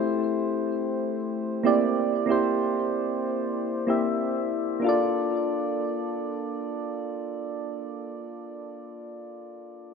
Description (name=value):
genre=chillout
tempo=94 BPM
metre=4/4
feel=swing 58% on 16ths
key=Bb lydian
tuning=A4 = 440 Hz
part: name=soft electric-piano-like synth keys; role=accompaniment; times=0.0-9.9 s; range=A3 to E5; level=-25 LUFS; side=moving between left 4 dB and right 6 dB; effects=chorus, auto-pan, low-pass filter, digital delay
room=moderate plate reverb, RT60 2.3 s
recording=none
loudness=-24 LUFS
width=side -5 dB against mid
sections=0.0-4.8 A section; 4.8-7.4 B section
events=none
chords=0.0 Am7; 2.0 C7; 4.8 Bbmaj7